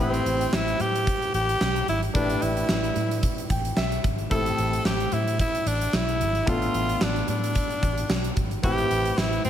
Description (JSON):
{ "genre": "1980s-style pop", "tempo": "111 BPM", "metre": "4/4", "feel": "swing 55% on 16ths", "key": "A minor", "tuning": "A4 = 438 Hz", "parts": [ { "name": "raspy tenor saxophone", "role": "melody", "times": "0.0-9.5 s", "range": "C4 to A4", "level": "-26 LUFS", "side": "equal", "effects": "none" }, { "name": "clear concert grand piano", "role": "accompaniment", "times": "0.0-9.5 s", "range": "A2 to G5", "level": "-30 LUFS", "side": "left 2 dB", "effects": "none" }, { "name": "vintage muted fingered electric bass", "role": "bass", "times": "0.0-9.5 s", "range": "G#1 to A2", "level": "-28 LUFS", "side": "equal", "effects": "none" }, { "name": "huge arena drum kit", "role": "drums", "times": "0.1-9.5 s", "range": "hi-hat, kick drum, snare drum", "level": "-27 LUFS", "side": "equal", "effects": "gated reverb" } ], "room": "light reverb, studio reverb", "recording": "none", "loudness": "-22 LUFS", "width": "side -10 dB against mid", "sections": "0.0-9.5 A section", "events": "grand piano fill 3.2-4.3", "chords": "0.0 Cmaj7/A; 2.2 Em7/A; 4.3 Am7; 6.5 Bm7b5/A; 8.6 Cmaj7/A" }